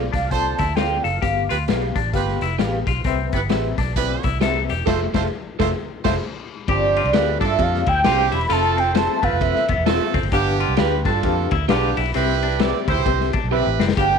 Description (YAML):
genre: uptempo 1960s-style soul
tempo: 132 BPM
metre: 4/4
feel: swing 61% on 8ths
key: G mixolydian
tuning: A4 = 439 Hz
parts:
  - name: reed electric piano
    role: accompaniment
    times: 0.0-14.2 s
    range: A3 to G5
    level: -27 LUFS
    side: left 13 dB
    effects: overdrive, fast tremolo
  - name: electric guitar through a small old amp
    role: stabs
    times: 0.0-13.7 s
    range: F4 to F5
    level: -27 LUFS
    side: right 15 dB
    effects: analog chorus
  - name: vintage muted fingered electric bass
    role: bass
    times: 0.0-14.2 s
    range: E1 to G2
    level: -24 LUFS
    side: right 1 dB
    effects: tube saturation
  - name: mellow horn-like synth lead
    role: melody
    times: 0.1-2.0, 6.7-10.1, 14.0-14.2 s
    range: D5 to B5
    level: -21 LUFS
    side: right 2 dB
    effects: chorus
  - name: semi-hollow electric guitar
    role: riff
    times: 0.1-14.2 s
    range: A3 to A4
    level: -27 LUFS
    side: left 14 dB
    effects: phaser
  - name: raw garage drum kit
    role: drums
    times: 0.1-14.1 s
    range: crash cymbal, hi-hat, kick drum, ride cymbal, snare drum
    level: -24 LUFS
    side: left 4 dB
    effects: none
  - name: warm horn section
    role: second line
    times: 0.3-14.2 s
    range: A3 to D5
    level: -24 LUFS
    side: right 15 dB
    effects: none
room: small room reverb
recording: 1960s-style stereo with parts hard left and right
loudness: -18 LUFS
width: side -6 dB against mid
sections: 0.0-6.7 A section; 6.7-14.2 B section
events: band accent 4.9-6.7; drum fill 13.5-14.0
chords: 0.0 Dm7; 1.2 G7; 3.1 Cmaj7; 4.9 Fmaj7; 6.7 G7sus4; 8.5 Fmaj7; 10.3 G7; 12.1 Cmaj7